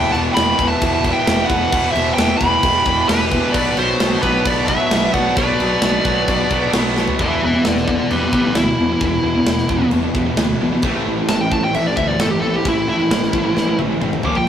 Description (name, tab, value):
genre	heavy metal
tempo	132 BPM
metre	4/4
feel	straight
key	E minor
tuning	A4 = 440 Hz
part	high-gain lead guitar	melody	0.0-14.5 s	E4 to D6	-19 LUFS	equal	distortion
part	high-gain lead guitar	second line	0.0-6.7 s	F#4 to G5	-26 LUFS	right 4 dB	distortion
part	distorted electric guitar	riff	0.0-14.2 s	A2 to E4	-26 LUFS	equal	overdrive
part	tight distorted guitar	riff	0.0-14.5 s	E2 to B3	-22 LUFS	left 4 dB	distortion
part	tight distorted guitar	riff	0.0-14.5 s	E2 to B3	-23 LUFS	right 5 dB	distortion
part	fuzz picked electric bass	bass	0.0-14.4 s	E1 to D2	-25 LUFS	equal	overdrive
part	tight metal drum kit	drums	0.1-14.5 s	crash cymbal, kick drum, snare drum, toms	-21 LUFS	equal	none
room	moderate studio reverb, RT60 0.6 s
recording	rough rehearsal-room recording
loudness	-14 LUFS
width	side -9 dB against mid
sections	0.0-7.2 A section; 7.2-14.5 B section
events	drum fill 7.0, 13.6-14.5; lead electric guitar solo 7.2-14.5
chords	0.0 Em; 3.6 Bm; 7.2 Em; 10.8 Am; 14.3 A#5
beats	0.36 0.82 1.28 | 1.73 2.19 2.64 3.10 | 3.55 4.01 4.46 4.92 | 5.37 5.83 6.28 6.74 | 7.19 7.65 8.11 8.56 | 9.02 9.47 9.93 10.38 | 10.84 11.29 11.75 12.20 | 12.66 13.11 13.57 14.02 | 14.48